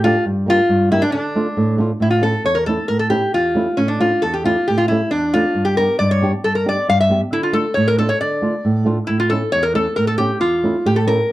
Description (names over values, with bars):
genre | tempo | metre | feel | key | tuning
klezmer | 136 BPM | 2/4 | straight | unclear | A4 = 440 Hz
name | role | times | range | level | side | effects
lap resonator guitar | melody | 0.0-11.3 s | C#4 to F5 | -17 LUFS | left 1 dB | none
nylon-string guitar | accompaniment | 0.0-11.2 s | E2 to G4 | -18 LUFS | right 1 dB | none
room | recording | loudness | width
moderate small room reverb, RT60 0.6 s | dark, warm production | -15 LUFS | side -15 dB against mid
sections
0.0-2.0 A section; 2.0-9.1 B section; 9.1-11.3 B section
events
none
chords
0.2 Gm; 1.1 Dm; 2.0 A; 5.5 G; 7.3 Dm; 9.1 A